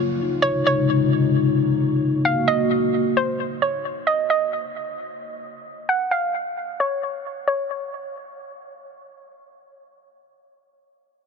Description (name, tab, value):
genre	hip hop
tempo	132 BPM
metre	4/4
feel	half-time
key	unclear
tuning	A4 = 440 Hz
part	dark analog pad	sustained chords	0.0-3.8 s	C3 to Gb4	-20 LUFS	left 2 dB	wide subtle chorus
part	hollow square pluck	melody	0.4-8.8 s	C5 to Gb5	-23 LUFS	right 1 dB	chorus, ping-pong delay
room	light reverb, small room ambience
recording	dense, heavily limited modern master, low-pass filter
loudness	-19 LUFS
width	side -5 dB against mid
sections	0.0-7.5 A section; 7.5-11.1 B section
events	none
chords	0.2 Dbmaj9; 2.0 Gb69; 3.8 N.C.